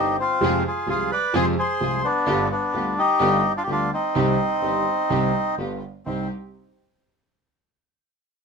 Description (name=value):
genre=tango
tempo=128 BPM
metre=4/4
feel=rubato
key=C harmonic minor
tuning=A4 = 440 Hz
part: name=bandoneon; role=melody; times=0.0-6.3 s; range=B3 to D5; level=-21 LUFS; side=left 1 dB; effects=none
part: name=warm concert grand piano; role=accompaniment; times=0.0-6.3 s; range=G1 to G4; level=-24 LUFS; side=right 1 dB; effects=none
part: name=warm studio string section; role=stabs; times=0.0-6.3 s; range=B3 to C5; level=-31 LUFS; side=right 2 dB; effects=none
room=moderate studio reverb, RT60 0.7 s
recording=minimal, uncompressed stereo recording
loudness=-20 LUFS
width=side -5 dB against mid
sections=0.0-6.1 A section; 6.1-7.9 B section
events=none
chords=0.4 Fm; 2.3 G7; 4.1 Cm; 5.6 G7; 6.1 Cm